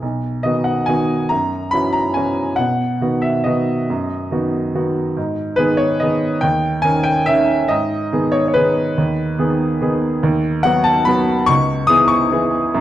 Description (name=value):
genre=classical, piano waltz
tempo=141 BPM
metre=3/4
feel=rubato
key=B major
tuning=A4 = 441 Hz
part: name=clear upright piano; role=solo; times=0.0-12.8 s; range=B1 to D#6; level=-15 LUFS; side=equal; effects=none
room=wet recital hall reverb, RT60 1.6 s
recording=dark, warm production, faint mains hum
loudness=-15 LUFS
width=side -12 dB against mid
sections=0.0-12.8 A section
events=none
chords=0.0 B; 1.3 F#7; 2.6 B; 5.2 G#m; 6.4 D#7; 7.7 G#m; 10.2 B/D#; 11.5 C#m7